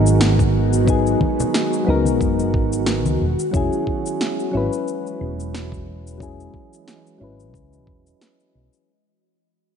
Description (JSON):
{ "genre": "sunset chillout", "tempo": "90 BPM", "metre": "4/4", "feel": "swing 55% on 16ths", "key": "unclear", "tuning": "A4 = 441 Hz", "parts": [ { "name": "soft electric-piano-like synth keys", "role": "accompaniment", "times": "0.0-8.9 s", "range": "F#3 to B4", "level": "-23 LUFS", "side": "moving between left 7 dB and right 6 dB", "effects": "chorus, auto-pan, low-pass filter, tape echo" }, { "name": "ethereal airy pad", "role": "sustained chords", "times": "0.0-8.8 s", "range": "D#3 to D#5", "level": "-24 LUFS", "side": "right 1 dB", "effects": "ensemble chorus, built-in reverb, phaser" }, { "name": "mellow fretless electric bass", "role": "bass", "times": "0.0-8.7 s", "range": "E1 to C#2", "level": "-21 LUFS", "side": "equal", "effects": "wide subtle chorus" }, { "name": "electronic cabasa and snare drum", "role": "drums", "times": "0.1-8.8 s", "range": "none", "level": "-25 LUFS", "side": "equal", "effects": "overdrive" }, { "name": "electronic kick drum", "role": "drums", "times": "0.4-8.0 s", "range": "none", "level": "-23 LUFS", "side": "equal", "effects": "none" }, { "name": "congas", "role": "percussion", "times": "0.4-3.2 s", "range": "none", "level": "-26 LUFS", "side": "left 2 dB", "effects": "none" } ], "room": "light reverb", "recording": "nothing above 10.6 kHz", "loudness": "-17 LUFS", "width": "side -7 dB against mid", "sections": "0.0-8.9 A section", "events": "fade-out 0.0-8.9; filter sweep on synth keys 0.0-8.9; filter sweep on ambient pad 0.0-8.9", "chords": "0.0 G#m7; 3.2 E69", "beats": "0.21 | 0.87 1.54 2.21 2.87 | 3.54 4.21 4.87 5.54 | 6.21 6.87 7.54 8.21" }